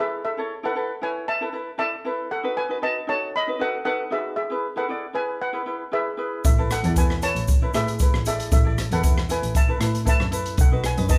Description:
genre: calypso.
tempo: 116 BPM.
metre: 4/4.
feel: straight.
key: A major.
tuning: A4 = 444 Hz.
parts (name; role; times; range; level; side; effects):
steel pan; melody; 0.0-11.2 s; G#4 to B5; -29 LUFS; equal; none.
ukulele; accompaniment; 0.0-11.2 s; D#4 to D5; -31 LUFS; equal; none.
rich double bass; bass; 6.4-11.2 s; A1 to A2; -28 LUFS; equal; none.
open jazz drum kit; drums; 6.4-11.2 s; hi-hat, kick drum, rim click; -23 LUFS; equal; none.
tube shaker; percussion; 6.4-11.2 s; none; -40 LUFS; equal; none.
room: light reverb.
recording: band playing live in one room.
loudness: -23 LUFS.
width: mono.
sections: 0.0-11.2 A section.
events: none.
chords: 0.0 Asus2; 2.3 B7; 4.4 E; 6.4 Asus2; 10.6 B7.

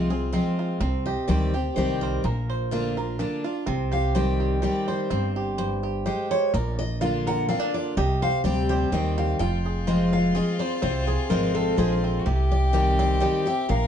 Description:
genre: bluegrass.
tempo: 126 BPM.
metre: 3/4.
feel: straight.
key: C minor.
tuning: A4 = 440 Hz.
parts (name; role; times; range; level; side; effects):
bluegrass banjo; melody; 0.0-13.9 s; C4 to C5; -30 LUFS; right 4 dB; none.
picked steel-string acoustic guitar; accompaniment; 0.0-13.9 s; F2 to G4; -26 LUFS; left 2 dB; none.
upright bass; bass; 0.0-13.9 s; F1 to Eb2; -26 LUFS; right 1 dB; none.
picked steel-string acoustic guitar; melody; 1.1-13.9 s; Ab4 to G5; -29 LUFS; left 1 dB; none.
bright fiddle; second line; 9.4-13.9 s; F4 to Bb4; -29 LUFS; left 3 dB; none.
room: moderate studio reverb, RT60 0.7 s.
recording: dark, warm production, nothing above 10.5 kHz.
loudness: -22 LUFS.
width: side -8 dB against mid.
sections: 0.0-9.4 A section; 9.4-13.9 A section.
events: steel-string acoustic guitar solo 0.0-13.9.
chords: 0.0 Fm; 0.8 Cm; 2.2 Bb; 3.7 Cm; 6.5 Bb; 8.0 Cm; 9.4 Fm; 12.3 Cm.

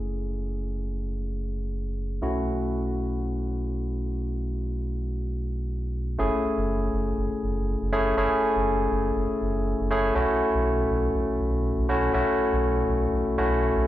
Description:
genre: deep house.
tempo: 121 BPM.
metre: 4/4.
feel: swing 56% on 16ths.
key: F# minor.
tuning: A4 = 440 Hz.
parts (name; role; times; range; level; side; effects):
barky tine electric piano; stabs; 0.0-13.9 s; A3 to G#4; -25 LUFS; left 1 dB; overdrive, dub echo.
sub bass with octave; bass; 0.0-13.9 s; F#1 to B1; -28 LUFS; right 1 dB; tube saturation.
room: light reverb, digital ambience.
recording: played on a big sound system in a bare room, large studio reverb.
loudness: -24 LUFS.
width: side -13 dB against mid.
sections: 0.0-6.2 A section; 6.2-13.9 B section.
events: drop 6.2-13.9.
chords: 0.0 F#m7; 2.2 B9sus4; 6.2 F#m7; 10.2 B9sus4.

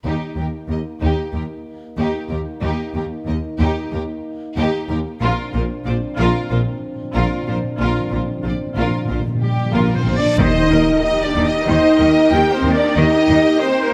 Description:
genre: cinematic, epic orchestral film score.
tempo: 93 BPM.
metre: 4/4.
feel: straight.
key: Eb major.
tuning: A4 = 444 Hz.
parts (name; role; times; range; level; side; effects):
timpani; percussion; 0.0-1.0, 5.2-11.3 s; Bb2 to Eb3; -26 LUFS; equal; none.
bright symphonic violin section; melody; 0.1-13.9 s; G4 to G5; -32 LUFS; equal; none.
warm symphonic violin section; second line; 0.1-13.9 s; Eb4 to G5; -30 LUFS; equal; none.
warm symphonic viola section; accompaniment; 0.1-13.9 s; F4 to C5; -29 LUFS; equal; none.
mellow French horn section; sustained chords; 0.1-13.9 s; G3 to G4; -23 LUFS; equal; none.
dark tuba; bass; 0.1-13.4 s; Bb1 to Eb2; -28 LUFS; equal; none.
rich symphonic cello section; bass; 0.1-13.4 s; Eb2 to Eb3; -28 LUFS; equal; none.
rich symphonic double bass section; bass; 0.1-13.4 s; Bb1 to Eb2; -26 LUFS; equal; none.
reverse cymbal and impact; sound effects; 10.1-13.0 s; none; -31 LUFS; equal; none.
bright flute section; second line; 9.4-13.9 s; G4 to G5; -28 LUFS; equal; none.
mellow trumpet section; stabs; 9.4-13.9 s; G4 to G5; -27 LUFS; equal; none.
rich studio string section; sustained chords; 10.4-13.9 s; Bb3 to Bb4; -29 LUFS; equal; none.
room: moderate scoring stage reverb, RT60 1.9 s.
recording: none.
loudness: -18 LUFS.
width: mono.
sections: 0.1-10.4 A section; 10.4-13.9 B section.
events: timpani fill 5.2-10.4; reverse cymbal 10.1; impact 10.4-13.0.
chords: 0.1 Eb; 5.2 Bbadd9; 10.4 Eb.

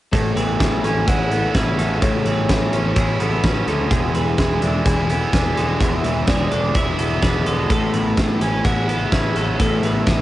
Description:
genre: rock, shoegaze and dream pop.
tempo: 127 BPM.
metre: 4/4.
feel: straight.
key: A major.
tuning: A4 = 436 Hz.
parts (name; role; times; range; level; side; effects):
icy glass pad; sustained chords; 1.5-10.2 s; C#3 to G#4; -34 LUFS; equal; none.
twelve-string electric guitar; arpeggios; 0.1-10.2 s; G#4 to B4; -29 LUFS; left 2 dB; lush chorus, cassette tape, tape echo.
biting overdriven guitar; riff; 0.1-10.2 s; E2 to E4; -24 LUFS; right 6 dB; reverse reverb, cassette tape.
fuzz guitar; riff; 0.1-10.2 s; E3 to D5; -24 LUFS; left 5 dB; distortion, wide subtle chorus, cassette tape.
growling picked electric bass; bass; 0.1-10.2 s; E1 to D2; -23 LUFS; equal; overdrive.
huge arena drum kit; drums; 0.1-10.2 s; hi-hat, kick drum, snare drum; -21 LUFS; equal; cassette tape.
breathy flute-like synth lead; melody; 0.8-10.2 s; C#5 to G#5; -28 LUFS; equal; chorus, cassette tape, tape echo.
room: light reverb.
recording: home recording on cassette, nothing above 11.0 kHz.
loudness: -16 LUFS.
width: side -15 dB against mid.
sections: 0.1-10.2 A section.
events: none.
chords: 0.1 Amaj9; 3.9 E7; 7.7 Amaj9.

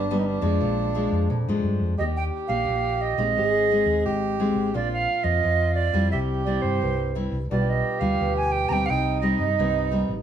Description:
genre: samba.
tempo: 87 BPM.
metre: 4/4.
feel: straight.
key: Eb major.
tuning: A4 = 440 Hz.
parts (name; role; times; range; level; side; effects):
breathy tenor saxophone; second line; 0.0-10.2 s; D4 to Ab4; -27 LUFS; right 3 dB; none.
nylon-string guitar; accompaniment; 0.0-10.2 s; F2 to G4; -27 LUFS; left 2 dB; none.
hollow-body short-scale fingered electric bass; bass; 0.0-10.2 s; G1 to Bb2; -27 LUFS; equal; none.
bright wooden flute; melody; 2.0-9.9 s; C5 to Bb5; -26 LUFS; right 6 dB; none.
room: light reverb.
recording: small room ambience.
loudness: -21 LUFS.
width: side -9 dB against mid.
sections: 0.0-2.0 A section; 2.0-10.2 B section.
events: tenor saxophone solo 0.0-2.0.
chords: 0.0 G; 0.6 Bb7; 2.0 Ebmaj7; 3.4 Ab; 4.8 Bbadd9; 6.1 C; 7.5 G7/B; 8.9 Cm.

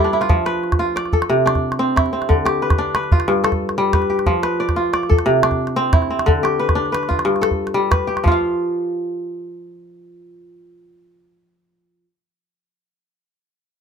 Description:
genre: west african traditional, West African string and xylophone music.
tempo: 121 BPM (dotted quarters).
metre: 12/8.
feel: straight.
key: F lydian.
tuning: A4 = 440 Hz.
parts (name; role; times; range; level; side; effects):
kora; arpeggios; 0.0-12.1 s; G2 to F5; -18 LUFS; left 1 dB; none.
calabash; percussion; 0.2-8.4 s; none; -18 LUFS; right 1 dB; none.
room: light reverb.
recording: close, detailed microphones.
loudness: -16 LUFS.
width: side -7 dB against mid.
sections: 0.0-8.2 A section; 8.2-12.2 B section.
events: kora fill 0.0.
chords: 0.3 F; 1.3 C; 2.3 Dm; 3.3 G; 4.3 F; 5.3 C; 6.3 Dm; 7.3 G; 8.2 Fsus2.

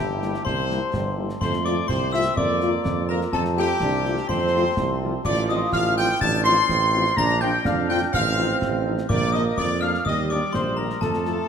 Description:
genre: military-style march for wind band.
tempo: 125 BPM.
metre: 2/4.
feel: straight.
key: F major, Bb major from 5.2 s.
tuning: A4 = 439 Hz.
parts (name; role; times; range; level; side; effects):
warm trumpet section; melody; 0.0-11.5 s; G4 to C6; -26 LUFS; equal; none.
bright wooden piccolo; second line; 0.0-11.5 s; G5 to C7; -31 LUFS; left 4 dB; none.
glockenspiel with brass mallets; second line; 0.0-11.5 s; G5 to C7; -30 LUFS; left 7 dB; none.
mellow woodwind section; second line; 0.0-11.5 s; G4 to C6; -29 LUFS; left 1 dB; none.
warm trombone section; sustained chords; 0.0-11.5 s; G3 to F4; -29 LUFS; right 4 dB; none.
warm tuba; bass; 0.0-11.4 s; G1 to F2; -26 LUFS; right 4 dB; none.
mellow French horn section; accompaniment; 0.2-11.4 s; F3 to G4; -31 LUFS; left 6 dB; none.
concert snare drum, concert bass drum and clash cymbals; drums; 0.2-11.4 s; none; -30 LUFS; equal; none.
room: moderate scoring stage reverb, RT60 1.8 s.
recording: none.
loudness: -20 LUFS.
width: side -7 dB against mid.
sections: 0.0-11.5 A section.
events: none.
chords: 0.0 C7; 1.4 F; 2.4 Bb/F; 3.3 F; 5.2 F/A; 7.2 Bb; 8.1 F7/A; 9.1 Bb; 10.1 Ebmaj7.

